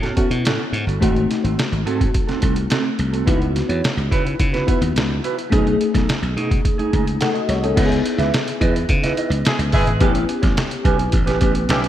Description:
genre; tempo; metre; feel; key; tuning
polished 1980s jazz-funk pop; 107 BPM; 4/4; straight; unclear; A4 = 444 Hz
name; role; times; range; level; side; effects
bell-like FM electric piano; accompaniment; 0.0-11.9 s; A3 to F#5; -23 LUFS; left 3 dB; ensemble chorus
mellow electric guitar; riff; 0.0-11.9 s; A3 to E5; -24 LUFS; right 5 dB; wide subtle chorus
slap bass; bass; 0.0-11.9 s; G1 to C#3; -21 LUFS; equal; none
trip hop sampler-style drum kit; drums; 0.0-11.9 s; crash cymbal, hi-hat, kick drum, snare drum; -20 LUFS; equal; none
clear horn section; second line; 9.5-11.8 s; G#3 to G#4; -25 LUFS; left 1 dB; none
room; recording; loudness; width
moderate lush hall reverb, RT60 1.9 s; dreamy mix soaked in reverb; -16 LUFS; side -12 dB against mid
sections
0.0-7.8 A section; 7.8-11.9 B section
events
none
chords
0.0 A6; 1.0 G#7b9; 3.3 C#m11; 5.5 B13; 7.8 C#m9; 10.0 A9

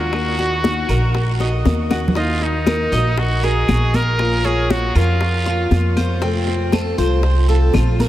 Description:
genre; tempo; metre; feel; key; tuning
latin, Cuban son and guajira; 118 BPM; 4/4; straight; Eb minor; A4 = 441 Hz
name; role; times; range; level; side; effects
brilliant trumpet; melody; 0.0-6.0 s; Eb4 to Bb4; -23 LUFS; right 1 dB; diffuse ambient delay
fingerpicked old ladder-braced acoustic guitar; accompaniment; 0.0-8.1 s; C3 to Gb4; -24 LUFS; left 2 dB; wide subtle chorus
Cuban tres; arpeggios; 0.0-8.1 s; C4 to Eb5; -25 LUFS; right 1 dB; diffuse ambient delay
upright bass; bass; 0.0-8.1 s; Bb1 to F2; -18 LUFS; equal; none
bongos; percussion; 0.1-8.1 s; none; -28 LUFS; left 6 dB; none
claves; percussion; 0.1-8.0 s; none; -38 LUFS; left 2 dB; none
congas; percussion; 0.1-8.1 s; none; -24 LUFS; left 1 dB; none
guiro; percussion; 0.1-8.1 s; none; -35 LUFS; right 5 dB; none
room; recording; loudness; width
moderate huge ambient reverb, RT60 4.8 s; dreamy mix soaked in reverb; -15 LUFS; side -13 dB against mid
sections
0.0-2.2 A section; 2.2-8.1 B section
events
drum fill 1.4-2.2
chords
0.1 Ebm; 4.2 Bbm; 6.2 F

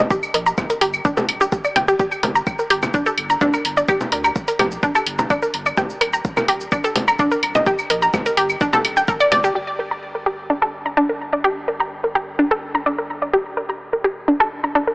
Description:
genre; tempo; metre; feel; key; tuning
melodic techno; 127 BPM; 4/4; straight; G minor; A4 = 440 Hz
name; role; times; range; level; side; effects
analog pluck; arpeggios; 0.0-14.9 s; D4 to Bb5; -18 LUFS; equal; chorus, sidechain pumping, digital delay
round analog bass; bass; 0.0-14.9 s; Eb1 to D2; -38 LUFS; equal; tube saturation, sidechain pumping
electronic kick drum; drums; 0.1-9.2 s; none; -24 LUFS; equal; none
electronic shaker, claves, hi-hat and congas; drums; 0.1-9.5 s; none; -22 LUFS; equal; none
room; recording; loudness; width
moderate huge ambient reverb, RT60 6.3 s; AM radio sound; -17 LUFS; side -26 dB against mid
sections
0.0-9.6 A section; 9.6-14.9 B section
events
none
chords
0.0 Eb (rootless); 2.0 Gm; 5.8 Eb; 9.6 Gm; 13.3 Eb5

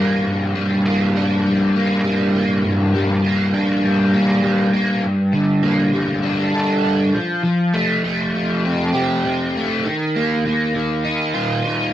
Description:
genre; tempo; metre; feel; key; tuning
rock; 100 BPM; 4/4; straight; G minor; A4 = 439 Hz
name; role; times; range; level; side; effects
crunchy overdriven guitar; solo; 0.0-11.9 s; G2 to A4; -16 LUFS; equal; rotary speaker
room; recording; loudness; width
wet stone room reverb, RT60 1.1 s; band playing live in one room; -16 LUFS; side -12 dB against mid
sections
0.0-5.0 A section; 5.0-11.9 B section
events
none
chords
0.0 Gm; 5.0 Gmadd9; 7.2 Fadd9; 9.8 Ebsus2

